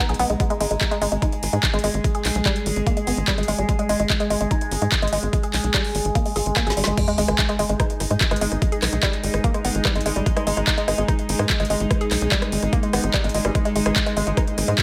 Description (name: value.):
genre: psychedelic trance.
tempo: 146 BPM.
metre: 4/4.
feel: straight.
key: unclear.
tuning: A4 = 440 Hz.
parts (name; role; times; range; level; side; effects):
overtone-sweeping drone; sustained chords; 0.0-14.8 s; G#3 to G#4; -31 LUFS; equal; chorus, built-in reverb, phaser, sidechain pumping.
woody wave-folded pluck; riff; 0.0-14.7 s; G3 to G#4; -28 LUFS; equal; chorus, sidechain pumping, delay.
tight sequencer bass; bass; 0.1-14.7 s; G#1 to G#2; -27 LUFS; equal; tube saturation.
garage drum kit; drums; 0.1-14.8 s; crash cymbal, handclaps, hi-hat, rim click, snare drum; -27 LUFS; equal; overdrive, studio reverb.
electronic kick drum; drums; 0.4-14.8 s; none; -25 LUFS; equal; overdrive, studio reverb.
sub drop; sound effects; 7.0-8.6 s; none; -35 LUFS; equal; none.
granular cloud pad; texture; 7.9-14.8 s; D#4 to D#5; -34 LUFS; equal; built-in reverb, sidechain pumping.
room: light reverb.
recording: none.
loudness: -21 LUFS.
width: mono.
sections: 0.0-7.0 A section; 7.0-14.8 B section.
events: drum fill 6.6-7.0; drop 7.0-14.8; impact 7.0-8.6.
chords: 0.0 G#5.